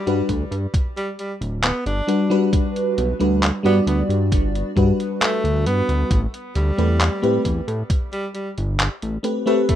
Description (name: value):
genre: vaporwave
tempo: 67 BPM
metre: 4/4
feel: straight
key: unclear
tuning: A4 = 440 Hz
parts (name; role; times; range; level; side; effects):
- clear tenor saxophone; melody; 0.0-9.8 s; G3 to D4; -27 LUFS; equal; tape echo
- FM electric piano with soft pad layer; accompaniment; 0.1-9.8 s; G3 to D5; -20 LUFS; left 1 dB; wide subtle chorus
- chorused synth bass; bass; 0.1-9.2 s; D1 to A2; -21 LUFS; equal; none
- detuned 8-bit digital drum machine; drums; 0.1-9.8 s; handclaps, hi-hat; -24 LUFS; equal; none
- electronic kick drum; drums; 0.3-9.8 s; none; -20 LUFS; equal; overdrive
room: moderate studio ambience, RT60 0.5 s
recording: rough home demo mix, cassette tape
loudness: -18 LUFS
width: side -11 dB against mid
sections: 0.0-9.8 A section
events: none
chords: 0.0 Gmaj7; 6.1 Am9